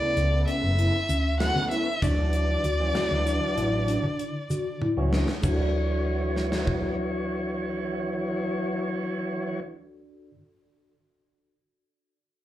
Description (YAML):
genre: progressive instrumental, band music in an uneven meter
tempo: 194 BPM (eighths)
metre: 11/8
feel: straight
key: D major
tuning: A4 = 440 Hz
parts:
  - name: dark violin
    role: melody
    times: 0.0-4.8 s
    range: D5 to F#5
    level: -28 LUFS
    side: equal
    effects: slapback echo
  - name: tonewheel organ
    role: accompaniment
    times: 0.0-9.6 s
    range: C#3 to C#5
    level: -29 LUFS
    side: equal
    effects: overdrive, slow rotary speaker, slapback echo
  - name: mellow tine electric piano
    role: arpeggios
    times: 0.0-10.4 s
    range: C#4 to D5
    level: -33 LUFS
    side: left 1 dB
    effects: medium stereo tremolo, slapback echo, tape echo
  - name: hollow-body short-scale fingered electric bass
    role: bass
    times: 0.2-10.3 s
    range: F#1 to D3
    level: -27 LUFS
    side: equal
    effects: none
  - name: gated 80s drum kit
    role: drums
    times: 0.2-6.8 s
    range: crash cymbal, hi-hat, kick drum, snare drum, toms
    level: -31 LUFS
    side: equal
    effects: none
  - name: egg shaker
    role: percussion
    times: 1.1-5.7 s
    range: none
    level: -46 LUFS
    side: left 2 dB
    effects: none
room: light reverb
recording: live gig heard through the venue's PA, club ambience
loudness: -24 LUFS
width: side -13 dB against mid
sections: 0.0-5.4 A section; 5.4-8.8 B section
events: drum fill 4.8-5.4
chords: 0.0 Aadd9; 2.0 Dmaj7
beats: 0.17 0.48 0.79 1.10 1.41 1.72 | 2.03 2.34 2.65 2.96 3.27 3.58 3.89 4.20 4.50 4.82 5.12 | 5.43 5.74 6.05 6.36 6.67 6.98 7.29 7.60 7.91 8.22 8.53